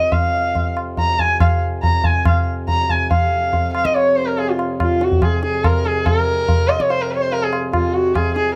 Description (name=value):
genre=indian classical, Hindustani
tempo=142 BPM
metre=7/4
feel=straight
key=F raga bhairavi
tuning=A4 = 440 Hz
part: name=dark sarangi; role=melody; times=0.0-8.5 s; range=F4 to Bb5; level=-20 LUFS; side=equal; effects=none
part: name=pedal harmonium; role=drone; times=0.0-8.6 s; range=F2 to C3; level=-29 LUFS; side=equal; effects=none
part: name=tabla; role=percussion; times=0.1-8.5 s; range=none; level=-21 LUFS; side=equal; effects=none
room=light reverb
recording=close, detailed microphones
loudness=-18 LUFS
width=mono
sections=0.0-3.1 A section; 3.1-8.6 B section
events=speeding up 0.0-8.6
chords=none